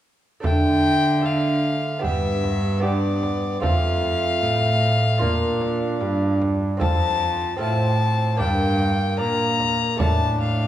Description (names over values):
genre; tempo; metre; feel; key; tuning
classical, renaissance-style consort dance; 75 BPM; 4/4; straight; D minor; A4 = 440 Hz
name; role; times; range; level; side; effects
warm violin; melody; 0.4-10.7 s; D5 to Bb5; -24 LUFS; left 5 dB; none
lute; accompaniment; 0.4-10.7 s; F2 to D5; -26 LUFS; right 3 dB; none
mellow bassoon; accompaniment; 0.4-10.7 s; A3 to D4; -28 LUFS; equal; none
rich cello; bass; 0.4-10.7 s; F2 to D3; -24 LUFS; right 1 dB; none
frame drum; percussion; 0.4-10.4 s; none; -26 LUFS; right 1 dB; none
room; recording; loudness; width
wet recital hall reverb, RT60 1.7 s; minimal, uncompressed stereo recording; -19 LUFS; side -12 dB against mid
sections
0.4-10.7 A section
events
none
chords
0.4 Dm; 2.0 G; 3.6 F; 5.2 Bb; 6.8 F; 8.4 Gm; 10.0 Asus4